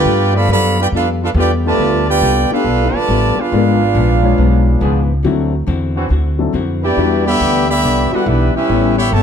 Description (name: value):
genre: jazz, big band swing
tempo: 139 BPM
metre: 4/4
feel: swing 66% on 8ths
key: unclear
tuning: A4 = 440 Hz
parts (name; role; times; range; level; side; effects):
- bright trumpet section; melody; 0.0-9.2 s; C#4 to B5; -16 LUFS; right 1 dB; none
- clear trombone section; second line; 0.0-9.2 s; C#3 to G4; -19 LUFS; right 3 dB; none
- warm upright piano; accompaniment; 0.0-9.0 s; F#3 to C#5; -20 LUFS; left 7 dB; none
- upright bass; bass; 0.0-9.2 s; G1 to G2; -16 LUFS; equal; none
- archtop guitar, miked and amplified; accompaniment; 0.1-9.2 s; G#2 to A4; -22 LUFS; left 7 dB; none
- warm trombone section; sustained chords; 1.3-1.5, 4.8-6.1 s; E3 to G#4; -25 LUFS; equal; none
room: moderate large studio reverb, RT60 1.0 s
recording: dark, warm production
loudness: -12 LUFS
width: side -7 dB against mid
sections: 0.0-9.2 A section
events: none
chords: 0.1 G9; 3.5 G#dim7; 5.2 D9; 7.0 Em7; 8.7 A9